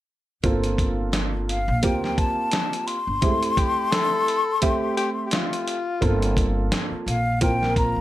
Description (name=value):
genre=hip hop, jazz-hop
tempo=86 BPM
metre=4/4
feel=swing 57% on 16ths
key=G dorian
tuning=A4 = 440 Hz
part: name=dark upright piano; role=accompaniment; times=0.4-8.0 s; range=Ab3 to E5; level=-26 LUFS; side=right 3 dB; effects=none
part: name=upright bass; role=bass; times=0.4-8.0 s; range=G1 to D2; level=-25 LUFS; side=equal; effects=none
part: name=dusty soul sampler-style drum kit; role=drums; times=0.4-8.0 s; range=hi-hat, kick drum, snare drum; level=-25 LUFS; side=equal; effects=none
part: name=breathy concert flute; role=melody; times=1.5-8.0 s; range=F5 to C6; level=-24 LUFS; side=left 2 dB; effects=none
part: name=breathy tenor saxophone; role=second line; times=3.6-6.7 s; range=F4 to A4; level=-27 LUFS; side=left 4 dB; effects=none
room=light reverb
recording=none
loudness=-20 LUFS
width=side -14 dB against mid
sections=0.4-8.0 A section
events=none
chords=0.4 Gm11; 3.2 Fmaj9; 6.0 Gm11